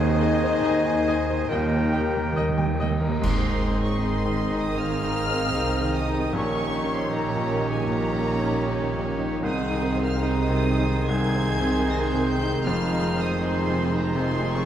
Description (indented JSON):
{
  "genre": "classical, romantic movement for piano and orchestra",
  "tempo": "77 BPM",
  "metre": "4/4",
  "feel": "uneven beats, rubato",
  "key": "Ab major",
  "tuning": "A4 = 440 Hz",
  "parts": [
    { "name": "clear baby grand piano", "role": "melody", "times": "0.0-14.7 s", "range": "Bb1 to Ab5", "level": "-27 LUFS", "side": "left 2 dB", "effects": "none" },
    { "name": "rich symphonic violin section", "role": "melody", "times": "0.0-14.7 s", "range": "C5 to Bb6", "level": "-34 LUFS", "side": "equal", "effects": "none" },
    { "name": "bright oboe", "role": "second line", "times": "0.0-14.7 s", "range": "C5 to Ab5", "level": "-35 LUFS", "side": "right 1 dB", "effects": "none" },
    { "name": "clear clarinet", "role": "second line", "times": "0.0-14.7 s", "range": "G4 to C5", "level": "-34 LUFS", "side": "left 2 dB", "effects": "none" },
    { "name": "mellow hollow concert flute", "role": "second line", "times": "0.0-14.7 s", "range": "Ab4 to Ab5", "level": "-38 LUFS", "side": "left 1 dB", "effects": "none" },
    { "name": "rich symphonic violin section", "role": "second line", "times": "0.0-14.7 s", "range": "Eb4 to Eb5", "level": "-37 LUFS", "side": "left 2 dB", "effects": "none" },
    { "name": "warm bassoon", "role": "accompaniment", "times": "0.0-14.7 s", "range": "Eb3", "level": "-33 LUFS", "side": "right 1 dB", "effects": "none" },
    { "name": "mellow French horn section", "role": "sustained chords", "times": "0.0-14.7 s", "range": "Eb3 to Eb4", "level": "-32 LUFS", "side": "left 5 dB", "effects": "none" },
    { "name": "mellow trombone section", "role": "sustained chords", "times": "0.0-1.8 s", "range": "Bb2 to G3", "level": "-40 LUFS", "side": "right 4 dB", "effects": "none" },
    { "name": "warm trumpet section", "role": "stabs", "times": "0.0-2.3 s", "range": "Eb5", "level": "-35 LUFS", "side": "right 2 dB", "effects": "none" },
    { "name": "mellow tuba", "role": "bass", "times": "0.0-3.1 s", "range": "Eb2", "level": "-30 LUFS", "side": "right 4 dB", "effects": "none" },
    { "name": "rich symphonic cello section", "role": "bass", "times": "0.0-14.7 s", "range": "F2 to Eb3", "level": "-32 LUFS", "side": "right 3 dB", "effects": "none" },
    { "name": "rich symphonic double bass section", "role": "bass", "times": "0.0-14.7 s", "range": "F1 to Eb2", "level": "-29 LUFS", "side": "right 3 dB", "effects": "none" },
    { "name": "rich symphonic viola section", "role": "accompaniment", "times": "0.2-14.7 s", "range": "Eb3 to Ab5", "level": "-32 LUFS", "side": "right 3 dB", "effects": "none" },
    { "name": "timpani", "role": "percussion", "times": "1.5-3.2 s", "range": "Eb3", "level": "-30 LUFS", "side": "right 2 dB", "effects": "none" },
    { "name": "clash cymbals and concert bass drum", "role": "percussion", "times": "3.2-4.8 s", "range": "none", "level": "-31 LUFS", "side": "equal", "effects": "none" }
  ],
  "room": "moderate scoring stage reverb, RT60 2.0 s",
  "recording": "none",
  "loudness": "-21 LUFS",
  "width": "side -10 dB against mid",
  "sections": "0.0-3.2 A section; 3.2-14.7 B section",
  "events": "timpani fill 1.5-3.2; band accent 3.2-4.0",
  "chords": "0.0 Ab/Eb; 1.5 Eb; 3.2 Ab; 6.4 Eb7/Bb; 9.4 Ab/C; 12.6 Fm7"
}